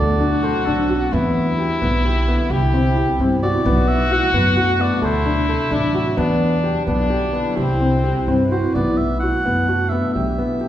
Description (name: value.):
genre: contemporary instrumental, chamber music in an uneven meter.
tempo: 260 BPM (eighths).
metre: 11/8.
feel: straight.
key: B phrygian.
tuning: A4 = 440 Hz.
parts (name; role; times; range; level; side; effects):
clear oboe; melody; 0.0-10.7 s; A4 to F#5; -24 LUFS; right 2 dB; none.
stopped French horn; second line; 0.0-8.5 s; C4 to G4; -22 LUFS; left 3 dB; none.
evolving wavetable pad; sustained chords; 0.0-10.7 s; B2 to B4; -25 LUFS; right 1 dB; phaser, built-in reverb.
felt-muted upright piano; arpeggios; 0.0-10.7 s; B3 to A4; -21 LUFS; left 1 dB; none.
upright bass; bass; 0.0-10.7 s; A1 to G2; -21 LUFS; right 1 dB; none.
room: wet recital hall reverb, RT60 1.4 s.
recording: heard from further back in the room.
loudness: -16 LUFS.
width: side -12 dB against mid.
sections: 0.0-8.7 A section; 8.7-10.7 B section.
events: none.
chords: 0.0 D7; 1.1 Em7; 2.5 Cmaj7; 3.6 Bm7; 5.0 D7; 6.2 Em7; 7.6 Cmaj7; 8.7 Bm7; 10.1 Em7/B.